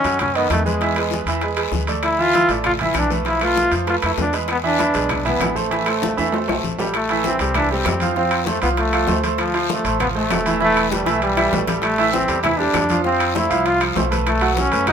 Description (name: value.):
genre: latin, salsa.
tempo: 196 BPM.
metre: 4/4.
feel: straight.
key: A harmonic minor, A minor from 6.9 s.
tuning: A4 = 440 Hz.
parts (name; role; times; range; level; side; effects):
bright trombone; melody; 0.0-14.9 s; F3 to F4; -20 LUFS; left 1 dB; none.
bright concert grand piano; accompaniment; 0.0-14.9 s; D#3 to F#5; -22 LUFS; right 4 dB; none.
upright bass; bass; 0.0-14.9 s; E1 to F#2; -27 LUFS; left 1 dB; none.
guiro; percussion; 0.0-14.9 s; none; -31 LUFS; left 8 dB; none.
timbales; percussion; 0.0-14.9 s; none; -26 LUFS; right 3 dB; none.
congas; percussion; 0.1-14.9 s; none; -30 LUFS; left 4 dB; none.
bongos; percussion; 0.2-14.9 s; none; -31 LUFS; left 8 dB; none.
claves; percussion; 2.0-14.9 s; none; -32 LUFS; left 12 dB; none.
room: moderate plate reverb, RT60 3.1 s.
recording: minimal, uncompressed stereo recording.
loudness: -16 LUFS.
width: side -7 dB against mid.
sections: 0.0-6.9 A section; 6.9-14.9 B section.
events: drum fill 6.0-6.9, 11.1-11.8.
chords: 0.0 B7; 0.8 E; 2.0 Dmadd9; 3.3 Dm69 (rootless); 4.5 E7; 5.7 Am; 6.9 Am7; 8.2 F; 9.4 Dm7; 10.6 Esus4; 11.8 Am7; 13.1 Fmaj7; 14.3 B7(no3).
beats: 0.20 0.51 | 0.81 1.12 1.42 1.73 | 2.04 2.34 2.65 2.96 | 3.26 3.57 3.87 4.18 | 4.49 4.79 5.10 5.41 | 5.71 6.02 6.32 6.63 | 6.94 7.24 7.55 7.85 | 8.16 8.47 8.77 9.08 | 9.38 9.69 9.99 10.30 | 10.61 10.91 11.22 11.52 | 11.83 12.13 12.44 12.74 | 13.05 13.36 13.66 13.97 | 14.27 14.58 14.88.